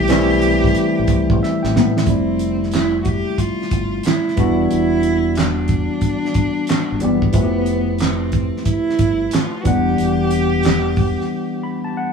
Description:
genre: R&B, neo-soul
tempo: 91 BPM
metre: 4/4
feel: swing 63% on 16ths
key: unclear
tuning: A4 = 440 Hz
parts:
  - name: warm cello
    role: melody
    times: 0.0-12.0 s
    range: B3 to G4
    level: -21 LUFS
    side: right 2 dB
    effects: none
  - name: barky tine electric piano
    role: accompaniment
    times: 0.0-12.1 s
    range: C3 to B5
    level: -20 LUFS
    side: left 3 dB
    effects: none
  - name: deep dub fingered electric bass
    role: bass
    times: 0.0-11.1 s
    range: E1 to A2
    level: -22 LUFS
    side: right 2 dB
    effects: none
  - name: damped 70s drum kit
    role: drums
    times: 0.1-11.3 s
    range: handclaps, hi-hat, kick drum, snare drum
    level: -19 LUFS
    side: right 2 dB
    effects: none
room: moderate studio reverb, RT60 0.5 s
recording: band playing live in one room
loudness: -15 LUFS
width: side -6 dB against mid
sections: 0.0-2.1 A section; 2.1-12.1 B section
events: tine electric piano fill 1.1-2.1, 11.3-12.1; drum fill 1.4-2.1; break 11.3-12.1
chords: 0.0 Am7; 2.1 Fmaj9; 4.4 Em9; 7.3 Fmaj9#11; 9.7 Em9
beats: 0.09 0.75 1.41 | 2.07 2.73 3.39 4.05 | 4.71 5.37 6.02 6.68 | 7.34 8.00 8.66 9.32 | 9.98 10.64 11.30 11.96

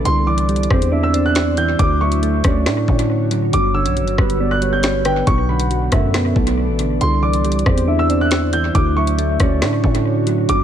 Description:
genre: hip hop, drill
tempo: 138 BPM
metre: 4/4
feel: half-time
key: unclear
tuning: A4 = 439 Hz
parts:
  - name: soft electric-piano-like synth keys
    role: accompaniment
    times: 0.0-10.6 s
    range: G2 to D4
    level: -21 LUFS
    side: right 5 dB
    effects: chorus, low-pass filter, analog delay
  - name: glassy FM pad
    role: sustained chords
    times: 0.0-10.6 s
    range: D3 to D5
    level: -25 LUFS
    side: left 1 dB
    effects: ensemble chorus, built-in reverb
  - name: growling 808-style bass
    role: bass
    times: 0.0-10.6 s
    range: G1 to A2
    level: -19 LUFS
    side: left 1 dB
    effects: none
  - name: warm concert grand piano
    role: melody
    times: 0.1-10.6 s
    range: G5 to G6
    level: -23 LUFS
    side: right 1 dB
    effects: low-pass filter, analog delay
  - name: drill drum kit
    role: drums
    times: 0.1-10.6 s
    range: hi-hat, kick drum, rim click, snare drum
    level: -20 LUFS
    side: left 1 dB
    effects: overdrive, vintage 12-bit sampler grit, analog delay
  - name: soft octave-layered synth lead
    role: second line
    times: 0.3-9.6 s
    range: B4 to F#5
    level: -25 LUFS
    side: left 2 dB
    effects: chorus, phaser, analog delay
room: little or no reverb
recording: echo-heavy mix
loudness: -14 LUFS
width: side -9 dB against mid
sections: 0.0-10.6 A section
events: none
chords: 0.1 Cadd9; 1.8 Dmaj7; 3.5 Gmaj7; 5.3 Bm7; 7.0 Cadd9; 8.7 Dmaj7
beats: | 0.05 0.49 0.92 1.36 | 1.79 2.23 2.66 3.10 | 3.53 3.97 4.40 4.84 | 5.27 5.71 6.14 6.58 | 7.01 7.45 7.88 8.31 | 8.75 9.18 9.62 10.05 | 10.49

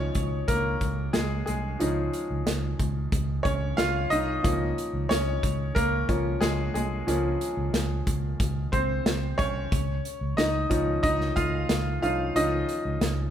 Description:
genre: piano-driven pop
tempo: 91 BPM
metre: 4/4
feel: straight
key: Db major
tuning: A4 = 441 Hz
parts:
  - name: bright grand piano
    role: accompaniment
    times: 0.0-13.3 s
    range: F3 to F5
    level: -27 LUFS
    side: equal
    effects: none
  - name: vintage muted fingered electric bass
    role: bass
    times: 0.0-13.3 s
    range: C2 to Db2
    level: -29 LUFS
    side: right 1 dB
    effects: none
  - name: modern studio drum kit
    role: drums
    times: 0.1-13.2 s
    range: hi-hat, kick drum, snare drum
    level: -29 LUFS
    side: equal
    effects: none
room: moderate large studio reverb, RT60 1.2 s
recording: band playing live in one room, faint mains hum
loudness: -24 LUFS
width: side -9 dB against mid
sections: 0.0-13.3 A section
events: grand piano solo 0.0-13.3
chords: 0.0 Dbadd9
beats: 0.49 1.15 | 1.80 2.46 3.12 3.78 | 4.44 5.10 5.76 6.42 | 7.08 7.74 8.40 9.06 | 9.72 10.38 11.04 11.70 | 12.36 13.02

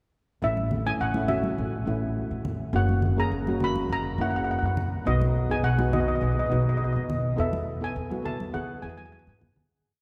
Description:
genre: calypso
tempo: 103 BPM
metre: 4/4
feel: straight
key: A major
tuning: A4 = 440 Hz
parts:
  - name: steel pan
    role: melody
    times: 0.4-9.4 s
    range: D#5 to B5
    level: -33 LUFS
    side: equal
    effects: none
  - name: steel pan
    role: accompaniment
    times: 0.4-9.4 s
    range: A3 to A4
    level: -33 LUFS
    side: equal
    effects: none
  - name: upright bass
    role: bass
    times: 0.4-9.7 s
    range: F#1 to B2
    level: -30 LUFS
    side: equal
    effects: none
  - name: congas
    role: percussion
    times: 0.6-9.7 s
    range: none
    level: -38 LUFS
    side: equal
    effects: none
room: wet cathedral reverb, RT60 5.4 s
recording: recorded in a church or concert hall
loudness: -26 LUFS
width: mono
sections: 0.4-9.7 verse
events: fade-out 7.4-9.7; drum fill 9.0-9.7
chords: 0.4 A; 2.7 F#; 5.1 B; 7.4 Esus4; 8.5 E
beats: | 0.42 1.00 1.58 2.16 | 2.74 3.32 3.90 4.48 | 5.06 5.64 6.22 6.80 | 7.38 7.97 8.55 9.13

